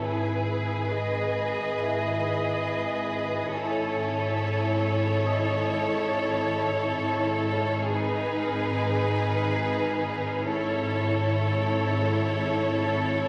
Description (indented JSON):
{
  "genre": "cinematic",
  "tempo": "69 BPM",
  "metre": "4/4",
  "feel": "straight",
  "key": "G# phrygian",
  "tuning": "A4 = 440 Hz",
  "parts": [
    { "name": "warm studio violin section", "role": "melody", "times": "0.0-13.3 s", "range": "B4 to C#5", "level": "-33 LUFS", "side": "equal", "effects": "none" },
    { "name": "rich studio viola section", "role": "accompaniment", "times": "0.0-13.3 s", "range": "D#4 to D#5", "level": "-34 LUFS", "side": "equal", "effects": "none" },
    { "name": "bright studio double bass section", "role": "bass", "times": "0.0-13.3 s", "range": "G#1", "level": "-36 LUFS", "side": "equal", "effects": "none" },
    { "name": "rich symphonic cello section", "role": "bass", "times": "0.0-13.3 s", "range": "G#2", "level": "-36 LUFS", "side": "equal", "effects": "none" },
    { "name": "rich studio violin section", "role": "texture", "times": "0.0-13.3 s", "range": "B5 to E#6", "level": "-47 LUFS", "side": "equal", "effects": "none" },
    { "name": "vibraphone with medium hard mallets", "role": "texture", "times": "0.0-10.5 s", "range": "E4 to D#6", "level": "-39 LUFS", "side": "equal", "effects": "none" },
    { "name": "rich studio violin section", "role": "second line", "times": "0.1-13.3 s", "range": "G#4 to A4", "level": "-33 LUFS", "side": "equal", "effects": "none" },
    { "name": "bowed-like drone", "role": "drone", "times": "0.1-13.3 s", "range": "G#1", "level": "-37 LUFS", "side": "equal", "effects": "built-in reverb" }
  ],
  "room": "wet scoring stage reverb, RT60 1.9 s",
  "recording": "vinyl crackle",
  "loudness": "-27 LUFS",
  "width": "mono",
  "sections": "0.0-13.3 A section",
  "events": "none",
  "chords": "0.0 G#m; 3.5 A/G#; 7.0 G#m; 10.5 A/G#",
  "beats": "| 0.04 0.91 1.78 2.65 | 3.52 4.39 5.26 6.13 | 7.00 7.87 8.74 9.61 | 10.48 11.35 12.22 13.09"
}